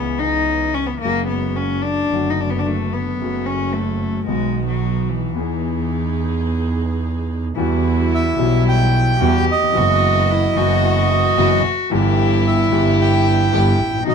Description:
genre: tango.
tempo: 111 BPM.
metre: 4/4.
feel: rubato.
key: E major, E harmonic minor from 7.6 s.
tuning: A4 = 440 Hz.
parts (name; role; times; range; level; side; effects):
warm cello; second line; 0.0-14.1 s; E3 to G4; -21 LUFS; left 3 dB; none.
warm concert grand piano; accompaniment; 0.0-14.1 s; G1 to G#4; -23 LUFS; left 5 dB; none.
warm chamber string section; stabs; 0.0-14.1 s; E3 to G#4; -28 LUFS; left 1 dB; none.
clear double bass; bass; 0.0-14.1 s; F#1 to E2; -20 LUFS; right 3 dB; none.
bandoneon; melody; 8.1-14.1 s; D#5 to G5; -20 LUFS; right 5 dB; none.
room: light reverb.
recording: close, detailed microphones.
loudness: -15 LUFS.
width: side -6 dB against mid.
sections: 0.0-7.6 A section; 7.6-14.1 B section.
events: cello solo 0.0-7.6.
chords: 0.0 C#m7; 1.0 F#add9; 2.1 D6/F#; 3.2 F#m; 4.3 B; 5.4 Emaj7; 7.6 Emadd9; 9.7 Bsus4/F#; 11.9 Em/G.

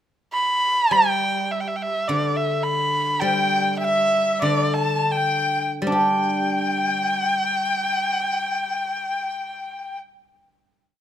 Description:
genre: chinese traditional, Chinese chamber ensemble.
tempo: 71-107 BPM.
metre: 2/4.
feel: rubato.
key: G gong mode.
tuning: A4 = 440 Hz.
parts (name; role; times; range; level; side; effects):
rich erhu; melody; 0.3-10.0 s; D5 to B5; -22 LUFS; right 2 dB; none.
guzheng; accompaniment; 0.9-11.0 s; D3 to G4; -25 LUFS; equal; none.
breathy dizi; second line; 3.2-10.0 s; D5 to A5; -24 LUFS; left 4 dB; none.
room: light reverb.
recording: close, detailed microphones.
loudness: -19 LUFS.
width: side -10 dB against mid.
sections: 0.0-0.9 pickup bar; 0.9-5.9 A section; 5.9-9.2 final chord.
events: slowing down 3.2-5.9.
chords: none.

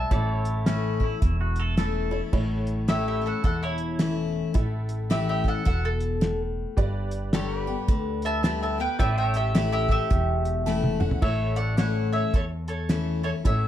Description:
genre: honky-tonk and classic country.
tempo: 108 BPM.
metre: 4/4.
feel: swing 61% on 8ths.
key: A mixolydian.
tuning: A4 = 436 Hz.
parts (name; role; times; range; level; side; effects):
mandolin; melody; 0.0-13.7 s; E4 to A5; -28 LUFS; right 1 dB; none.
honky-tonk upright piano; accompaniment; 0.0-13.7 s; E4 to A5; -38 LUFS; right 3 dB; none.
picked steel-string acoustic guitar; accompaniment; 0.0-13.7 s; E2 to G4; -30 LUFS; left 6 dB; none.
pedal steel guitar; sustained chords; 0.0-13.7 s; E4 to E5; -39 LUFS; right 3 dB; none.
upright bass; bass; 0.0-13.7 s; E1 to E2; -28 LUFS; equal; none.
cloth-damped thuddy drum kit; drums; 0.1-13.6 s; crash cymbal, hi-hat, kick drum, snare drum, toms; -24 LUFS; right 1 dB; none.
twangy electric guitar; second line; 0.7-2.2 s; C#4 to A4; -34 LUFS; right 2 dB; tape echo.
room: light reverb.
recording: dark, warm production.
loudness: -23 LUFS.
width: side -11 dB against mid.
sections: 0.0-2.3 A section; 2.3-11.2 B section; 11.2-13.7 A section.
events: mandolin solo 2.3-11.2; honky-tonk piano fill 10.4-11.2; drum fill 10.7-11.2.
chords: 0.1 A; 6.8 G; 9.0 A.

